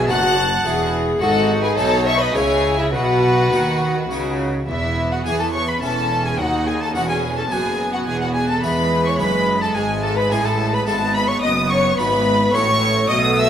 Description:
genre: classical, baroque-style concerto movement with solo episodes.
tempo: 107 BPM.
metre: 3/4.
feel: straight.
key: E major.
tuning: A4 = 440 Hz.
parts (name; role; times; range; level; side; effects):
rich violin; melody; 0.0-13.5 s; G#4 to E6; -23 LUFS; left 1 dB; none.
harpsichord; accompaniment; 0.0-13.5 s; D#2 to A4; -28 LUFS; left 1 dB; none.
rich chamber viola section; accompaniment; 0.0-13.5 s; G#3 to G#4; -24 LUFS; right 1 dB; none.
clear symphonic cello section; bass; 0.0-13.5 s; D#2 to E3; -25 LUFS; right 1 dB; none.
rich chamber double bass section; bass; 0.0-13.5 s; E1 to E2; -25 LUFS; right 2 dB; none.
clear studio violin section; melody; 0.1-13.5 s; E5 to F#6; -25 LUFS; left 2 dB; none.
rich chamber violin section; second line; 0.1-13.5 s; E4 to F#5; -23 LUFS; left 2 dB; none.
room: wet recital hall reverb, RT60 1.4 s.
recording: none.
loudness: -16 LUFS.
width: side -9 dB against mid.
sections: 0.0-4.7 A section; 4.7-13.5 A section.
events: none.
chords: 0.0 B7; 0.7 E; 1.2 G#m; 2.4 C#m; 2.9 B; 4.7 E; 5.8 A/E; 6.4 B7; 8.1 E; 9.2 D#dim/F#; 9.8 E/G#; 11.4 F#m.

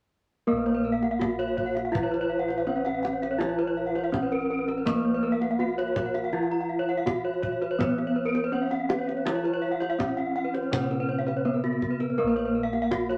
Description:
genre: Balinese gamelan.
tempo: 82 BPM.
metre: 4/4.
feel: straight.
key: Bb pelog.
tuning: A4 = 439 Hz.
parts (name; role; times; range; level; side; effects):
gamelan-type bronze metallophone; melody; 0.5-13.2 s; Bb3 to Gb4-40c; -30 LUFS; equal; none.
gamelan-type bronze metallophone; accompaniment; 0.5-13.2 s; C3+50c to Cb4; -38 LUFS; equal; none.
gamelan-type bronze metallophone; arpeggios; 0.5-13.1 s; Bb4 to Bb5; -37 LUFS; equal; none.
gamelan-type bossed gongs; bass; 0.5-13.2 s; Bb1 to Bb4; -38 LUFS; equal; none.
gamelan-type bronze metallophone; arpeggios; 0.6-13.2 s; Gb4-40c to Gb5-40c; -34 LUFS; equal; none.
kendang; percussion; 0.7-13.2 s; none; -36 LUFS; equal; none.
bass bansuri; second line; 1.9-11.3 s; E4+50c to Db5-45c; -38 LUFS; equal; none.
room: moderate studio reverb, RT60 0.7 s.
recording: none.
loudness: -27 LUFS.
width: mono.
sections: 0.5-13.2 A section.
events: none.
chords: none.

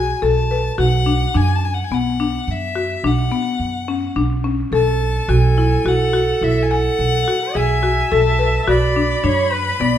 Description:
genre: contemporary instrumental, chamber music in an uneven meter.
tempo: 106 BPM.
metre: 7/4.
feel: straight.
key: B dorian.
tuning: A4 = 440 Hz.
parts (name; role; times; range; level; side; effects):
clear violin; melody; 0.0-10.0 s; E5 to B5; -23 LUFS; left 6 dB; none.
buzzing marimba with medium hard mallets; arpeggios; 0.0-10.0 s; B3 to G#5; -20 LUFS; left 4 dB; none.
upright bass; bass; 0.0-10.0 s; B1 to F#2; -19 LUFS; right 2 dB; none.
rich viola; second line; 4.7-10.0 s; A4 to E5; -21 LUFS; right 4 dB; none.
room: moderate recital hall reverb, RT60 1.4 s.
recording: dark, warm production.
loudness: -15 LUFS.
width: side -10 dB against mid.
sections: 0.0-10.0 A section.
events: none.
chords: 0.0 Esus4/B (rootless); 0.8 Bm; 4.7 Esus4/B; 8.7 Bmadd9.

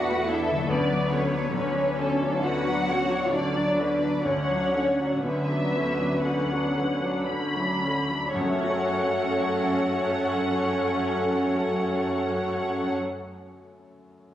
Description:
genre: cinematic, emotional film score for orchestra.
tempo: 56-75 BPM.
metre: 4/4.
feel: rubato.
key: F# minor.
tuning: A4 = 440 Hz.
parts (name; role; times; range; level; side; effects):
muted studio violin section; melody; 0.0-12.9 s; A4 to B5; -32 LUFS; left 2 dB; none.
mellow clarinet; second line; 0.0-12.9 s; B3 to F#4; -33 LUFS; equal; none.
muted symphonic violin section; second line; 0.0-12.9 s; B4 to F#5; -34 LUFS; left 1 dB; none.
silver concert flute; second line; 0.0-12.9 s; B4 to F#5; -32 LUFS; equal; none.
bright concert grand piano; accompaniment; 0.0-14.3 s; D2 to C#5; -34 LUFS; left 1 dB; none.
muted symphonic viola section; accompaniment; 0.0-13.0 s; D3 to A4; -30 LUFS; right 1 dB; none.
warm French horn section; sustained chords; 0.0-12.9 s; F#3 to D4; -32 LUFS; left 1 dB; none.
muted studio double bass section; bass; 0.0-12.9 s; D2 to F#2; -37 LUFS; right 2 dB; none.
muted symphonic cello section; bass; 0.0-12.9 s; F#3 to F#4; -33 LUFS; right 2 dB; none.
concert harp; arpeggios; 0.5-13.3 s; F#2 to C#5; -36 LUFS; left 8 dB; none.
room: moderate scoring stage reverb, RT60 2.0 s.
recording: recorded on a phone in the room, studio reverb, compression.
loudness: -23 LUFS.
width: side -12 dB against mid.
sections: 0.0-8.3 A section; 8.3-12.5 B section.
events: slowing down 0.0-8.3.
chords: 0.0 E7sus4; 0.7 Bmadd9/D; 8.3 F#m.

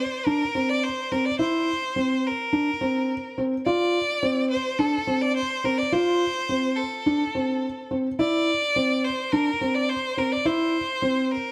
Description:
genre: electronica.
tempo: 106 BPM.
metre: 4/4.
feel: straight.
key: F major.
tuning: A4 = 440 Hz.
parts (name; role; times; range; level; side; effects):
rich violin; melody; 0.0-11.5 s; A4 to D5; -29 LUFS; equal; none.
felt-muted upright piano; riff; 0.3-11.3 s; C4 to F4; -26 LUFS; equal; delay.
room: moderate echo chamber reverb, RT60 1.3 s.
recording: none.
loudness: -24 LUFS.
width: mono.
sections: 0.0-11.5 A section.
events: none.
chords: 0.0 C7(no3); 3.7 F; 8.2 C7.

